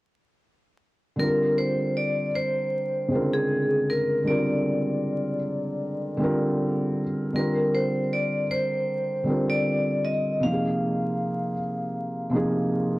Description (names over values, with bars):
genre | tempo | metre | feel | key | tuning
hip hop | 78 BPM | 4/4 | swing 57% on 16ths | unclear | A4 = 440 Hz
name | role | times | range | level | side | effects
vibraphone with hard mallets | melody | 1.2-13.0 s | Ab4 to F5 | -27 LUFS | left 1 dB | low-pass filter
felt-muted upright piano | accompaniment | 1.2-13.0 s | C3 to Bb4 | -25 LUFS | equal | cassette tape, low-pass filter
room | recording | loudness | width
moderate plate reverb, RT60 2.4 s | worn, warbling old tape, cassette tape, vinyl crackle, warbly pitch drift | -23 LUFS | side -19 dB against mid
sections
1.2-13.0 A section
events
none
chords
1.2 Bb9; 7.3 Csus2; 10.4 Fm7